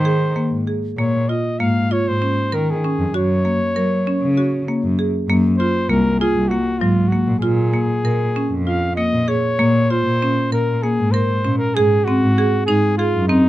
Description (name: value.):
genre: contemporary instrumental, chamber music in an uneven meter.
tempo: 195 BPM (eighths).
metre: 7/8.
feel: straight.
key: Bb minor.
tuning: A4 = 441 Hz.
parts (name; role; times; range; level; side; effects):
clear flugelhorn; melody; 0.0-13.5 s; Eb4 to F5; -22 LUFS; left 1 dB; none.
muted cello; bass; 0.0-13.5 s; C2 to Gb3; -20 LUFS; equal; none.
marimba with hard mallets; arpeggios; 0.1-13.5 s; Gb3 to Bb4; -19 LUFS; equal; none.
room: light reverb.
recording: nothing above 10.7 kHz.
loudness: -16 LUFS.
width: side -15 dB against mid.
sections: 0.0-9.6 A section; 9.6-13.5 B section.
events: none.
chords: 0.0 Abadd9; 1.0 Bbm; 3.1 Gb; 5.3 Ab13/C (rootless); 7.4 Bb7(no3); 9.6 Bbm7; 11.8 Ab7.